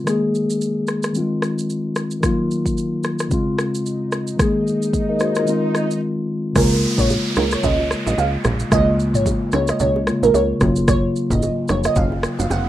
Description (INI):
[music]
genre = afrobeats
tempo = 111 BPM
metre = 4/4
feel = swing 58% on 16ths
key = unclear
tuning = A4 = 440 Hz
[part]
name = mellow tine electric piano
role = accompaniment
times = 0.0-12.7 s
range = Db3 to Eb5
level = -20 LUFS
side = left 2 dB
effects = none
[part]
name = afro-pop drum kit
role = drums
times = 0.1-12.7 s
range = kick drum, rim click, shaker, toms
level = -22 LUFS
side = equal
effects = vintage 12-bit sampler grit
[part]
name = swell, downlifter and riser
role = sound effects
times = 4.2-12.7 s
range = none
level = -29 LUFS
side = right 1 dB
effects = none
[part]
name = glassy wavetable pluck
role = melody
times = 6.6-12.7 s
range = Bb4 to Gb5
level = -21 LUFS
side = right 3 dB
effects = chorus
[part]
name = plucky analog bass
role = bass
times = 6.6-12.7 s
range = F1 to Db2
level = -22 LUFS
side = equal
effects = none
[part]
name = congas and bongos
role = percussion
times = 6.6-12.6 s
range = none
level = -27 LUFS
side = right 4 dB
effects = none
[sound]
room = wet small room reverb, RT60 0.5 s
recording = rough home demo mix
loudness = -17 LUFS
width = side -13 dB against mid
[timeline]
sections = 0.0-6.6 A section; 6.6-12.7 B section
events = swell 4.2-6.6; break 6.0-6.6; riser 11.2-12.7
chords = 0.1 Absus2; 1.2 Fm7; 2.2 Ebmadd9; 3.3 Dbmaj7; 4.4 Absus2; 5.5 Fm7; 6.6 Db6; 10.6 Gbmaj7